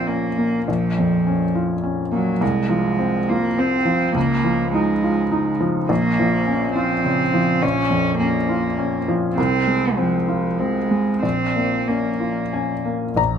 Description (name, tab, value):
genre	neoclassical piano and strings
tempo	92-106 BPM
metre	3/4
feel	rubato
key	Bb minor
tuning	A4 = 439 Hz
part	rich cello	second line	0.0-12.9 s	F3 to Db4	-21 LUFS	right 3 dB	none
part	felt-muted upright piano	accompaniment	0.0-13.4 s	Bb1 to Bb5	-20 LUFS	left 2 dB	none
part	dark double bass	bass	13.2-13.4 s	Bb1	-25 LUFS	equal	none
room	light reverb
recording	none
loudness	-18 LUFS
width	side -8 dB against mid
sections	0.0-13.2 A section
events	none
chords	0.0 Bbm; 2.4 Fm/C; 4.2 Dbadd9; 5.9 Bbm; 9.4 Fm/C; 11.2 Bbm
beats	0.07 | 0.68 1.26 1.84 | 2.42 3.00 3.58 | 4.15 4.74 5.33 | 5.90 6.47 7.05 | 7.63 8.20 8.78 | 9.37 9.97 10.59 | 11.23 11.88 12.53 | 13.18